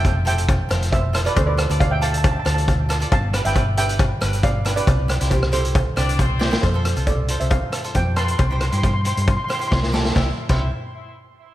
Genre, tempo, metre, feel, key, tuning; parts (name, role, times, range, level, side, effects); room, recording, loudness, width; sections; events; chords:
calypso; 136 BPM; 4/4; straight; C major; A4 = 440 Hz
steel pan; melody; 0.0-9.8 s; G4 to C6; -25 LUFS; right 2 dB; slapback echo, ping-pong delay
cavaquinho; accompaniment; 0.0-10.7 s; D4 to D5; -30 LUFS; right 2 dB; slapback echo
hollow-body short-scale fingered electric bass; bass; 0.0-10.7 s; F1 to G2; -21 LUFS; equal
street-band drum kit; drums; 0.0-10.6 s; crash cymbal, hi-hat, kick drum, rim click, snare drum; -21 LUFS; equal
cowbell; percussion; 0.1-10.7 s; -32 LUFS; left 6 dB; slapback echo
bright horn section; second line; 6.0-6.6, 10.2-10.7 s; C4 to E5; -31 LUFS; left 2 dB; ping-pong delay
light reverb, studio reverb; -17 LUFS; side -14 dB against mid
0.0-6.6 A section; 6.6-10.2 B section; 10.2-11.5 C section
drum fill 6.4, 9.7-10.2
0.0 Fmaj7; 1.4 Dm; 3.1 G7; 4.9 Cmaj7; 6.6 F; 8.4 C